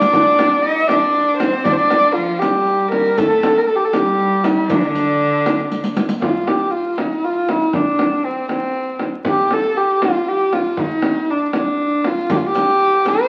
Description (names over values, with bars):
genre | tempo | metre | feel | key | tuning
Persian modal ensemble | 79 BPM (dotted quarters) | 6/8 | straight | D dastgah shur | A4 = 439 Hz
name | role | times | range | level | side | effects
warm kamancheh | melody | 0.0-13.3 s | C4 to Eb5+47c | -18 LUFS | equal | none
rich cello | second line | 0.0-6.0 s | D3 to Eb4+43c | -25 LUFS | equal | none
riq | percussion | 0.0-6.2, 12.3-13.2 s | none | -29 LUFS | equal | none
frame drum | percussion | 0.1-13.2 s | none | -24 LUFS | equal | none
room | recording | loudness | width
wet large studio reverb, RT60 1.0 s | very old 78 rpm record, vinyl crackle | -17 LUFS | mono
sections
0.0-6.2 A section; 6.2-13.3 B section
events
drum fill 5.7-6.2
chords
none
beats
| 0.14 0.90 | 1.66 2.42 | 3.18 3.94 | 4.69 5.45 | 6.21 6.97 | 7.73 8.49 | 9.25 10.01 | 10.77 11.53 | 12.29 13.05